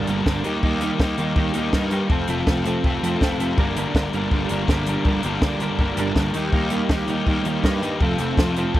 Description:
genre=indie rock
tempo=163 BPM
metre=4/4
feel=straight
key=unclear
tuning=A4 = 440 Hz
part: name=overdriven electric guitar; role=riff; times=0.0-8.8 s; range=G2 to Bb4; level=-25 LUFS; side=left 6 dB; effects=none
part: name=overdriven semi-hollow guitar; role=riff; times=0.0-8.8 s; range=F2 to Eb4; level=-25 LUFS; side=right 4 dB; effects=ensemble chorus, slapback echo
part: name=fuzz picked electric bass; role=bass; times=0.0-8.8 s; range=F1 to G2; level=-27 LUFS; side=equal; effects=overdrive
part: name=compact cocktail drum kit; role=drums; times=0.1-8.8 s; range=hi-hat, kick drum, snare drum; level=-21 LUFS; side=equal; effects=none
room=little or no reverb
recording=dry, close 1970s-style studio recording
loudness=-19 LUFS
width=side -14 dB against mid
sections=0.0-8.8 A section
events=none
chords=0.4 Eb; 2.1 F; 3.6 Gm; 6.3 Eb; 8.0 F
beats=0.26 | 0.63 1.00 1.37 1.73 | 2.10 2.47 2.84 3.21 | 3.58 3.94 4.31 4.68 | 5.05 5.42 5.79 6.16 | 6.53 6.90 7.27 7.64 | 8.01 8.37 8.74

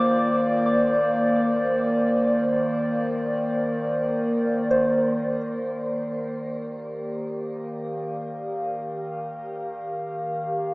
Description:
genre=ambient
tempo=free time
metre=none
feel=none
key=Eb major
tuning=A4 = 440 Hz
part: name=warbly tape-like pad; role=sustained chords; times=0.0-10.7 s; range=Eb3 to F5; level=-23 LUFS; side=equal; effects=chorus, built-in reverb, shimmer reverb
part: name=soft synth bell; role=arpeggios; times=0.0-7.3 s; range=F4 to D6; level=-29 LUFS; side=equal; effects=chorus, phaser, tape echo, shimmer reverb
room=wet huge ambient reverb, RT60 8.6 s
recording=dreamy mix soaked in reverb, small speaker sound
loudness=-22 LUFS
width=side -24 dB against mid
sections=0.0-5.5 A section; 5.5-10.7 B section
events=none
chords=0.0 Ebmaj7sus2; 5.5 Ebmaj9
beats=free time

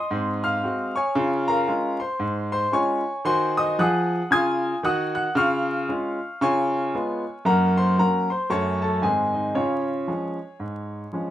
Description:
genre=jazz, stride piano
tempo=114 BPM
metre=4/4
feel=swing 60% on 8ths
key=Db major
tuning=A4 = 439 Hz
part: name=bright concert grand piano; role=solo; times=0.0-11.3 s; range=Gb2 to Ab6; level=-21 LUFS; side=equal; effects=none
room=moderate studio ambience, RT60 0.5 s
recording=minimal, uncompressed stereo recording, vinyl crackle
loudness=-21 LUFS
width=side -12 dB against mid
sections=0.0-11.3 A section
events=none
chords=0.1 Ab7; 1.2 Db; 3.3 Ab7/Eb; 5.4 Db; 6.4 Db7; 7.5 Gb; 8.5 Gbm; 9.0 Ab; 9.6 Db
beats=0.11 0.63 | 1.16 1.68 2.20 2.73 | 3.25 3.78 4.30 4.83 | 5.35 5.88 6.40 6.93 | 7.45 7.97 8.50 9.03 | 9.55 10.07 10.60 11.13

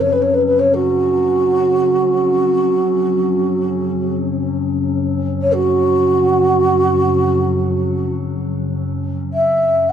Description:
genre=world meditative, free-time meditation music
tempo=free time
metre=none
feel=none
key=unclear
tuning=A4 = 441 Hz
part: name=breathy mellow low xiao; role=melody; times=0.0-9.9 s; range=F#4 to F#5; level=-15 LUFS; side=right 2 dB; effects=none
part: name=metallic inharmonic drone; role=drone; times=0.0-9.9 s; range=F#2 to C#3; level=-19 LUFS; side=left 2 dB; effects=chorus, built-in reverb, phaser
room=wet small room reverb, RT60 0.6 s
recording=dark, warm production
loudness=-14 LUFS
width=side -8 dB against mid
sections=0.0-8.3 A section; 8.3-9.9 A section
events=none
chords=none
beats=free time

